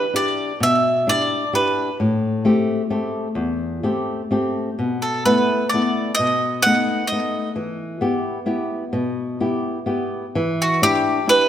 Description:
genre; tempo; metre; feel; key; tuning
italian folk, Italian serenade; 130 BPM; 3/4; rubato; E minor; A4 = 440 Hz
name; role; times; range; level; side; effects
bowl-back mandolin; melody; 0.0-2.0, 5.0-7.5, 10.6-11.5 s; F#4 to F#5; -18 LUFS; right 1 dB; slapback echo
flamenco guitar; accompaniment; 0.0-11.5 s; E2 to G4; -21 LUFS; left 2 dB; none
room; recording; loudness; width
moderate scoring stage reverb, RT60 1.6 s; close, detailed microphones; -18 LUFS; side -10 dB against mid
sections
0.0-10.3 A section; 10.3-11.5 A section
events
none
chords
0.0 Em7; 2.0 Am7; 4.8 B7sus4; 6.2 B7; 7.6 Em; 10.3 Em7

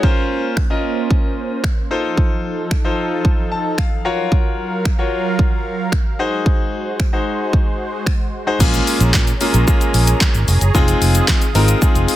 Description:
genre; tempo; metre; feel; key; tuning
dance-pop; 112 BPM; 4/4; straight; Bb minor; A4 = 440 Hz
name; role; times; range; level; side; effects
clear concert grand piano; accompaniment; 0.0-12.2 s; Ab3 to A5; -20 LUFS; left 2 dB; sidechain pumping
sweeping resonant pad; sustained chords; 0.0-12.2 s; F3 to Eb6; -25 LUFS; right 2 dB; chorus, sidechain pumping
house drum kit; drums; 0.0-12.2 s; crash cymbal, finger snaps, handclaps, hi-hat, kick drum, shaker, snare drum; -16 LUFS; equal; soft clipping on snare
vintage muted fingered electric bass; bass; 8.6-12.0 s; F1 to Bb2; -15 LUFS; equal; sidechain pumping
room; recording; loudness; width
little or no reverb; dense, heavily limited modern master; -14 LUFS; side -14 dB against mid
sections
0.0-8.6 A section; 8.6-12.2 B section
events
grand piano fill 3.2-4.3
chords
0.0 Bbmadd9; 1.9 F7; 4.0 Gbmaj7; 6.2 Ab7; 8.6 Bbm7; 10.7 Fm7

